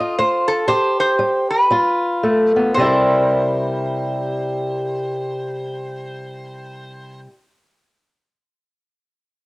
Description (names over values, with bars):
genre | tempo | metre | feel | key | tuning
acoustic country blues, solo or duo | 110-123 BPM | 4/4 | swing 61% on 8ths | C mixolydian | A4 = 440 Hz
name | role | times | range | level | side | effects
metal-body resonator slide guitar | melody | 0.0-7.2 s | A4 to Eb5 | -18 LUFS | right 1 dB | cassette tape
fingerpicked swing-style acoustic guitar | accompaniment | 0.0-7.3 s | C3 to Bb4 | -19 LUFS | equal | none
room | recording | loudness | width
moderate spring reverb, RT60 1.1 s, small room ambience | home recording on cassette | -16 LUFS | side -22 dB against mid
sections
0.0-2.8 A section; 2.8-7.1 B section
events
slowing down 0.0-2.8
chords
0.0 F7; 0.7 C5; 1.7 G7; 2.8 C7